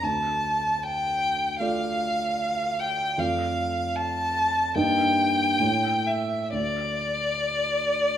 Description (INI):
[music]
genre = classical, romantic duo for violin and grand piano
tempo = 62-78 BPM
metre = 4/4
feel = rubato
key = D minor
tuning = A4 = 440 Hz
[part]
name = rich violin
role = melody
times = 0.0-8.2 s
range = D5 to A5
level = -24 LUFS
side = left 1 dB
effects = none
[part]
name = dark concert grand piano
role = accompaniment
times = 0.0-8.2 s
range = D2 to Eb5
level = -29 LUFS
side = right 2 dB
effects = none
[sound]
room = wet recital hall reverb, RT60 1.6 s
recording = none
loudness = -23 LUFS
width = side -10 dB against mid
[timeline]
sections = 0.0-8.2 A section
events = none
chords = 0.0 Dm; 3.2 Dm/F; 4.8 Eb/G; 5.6 A7; 6.5 N.C.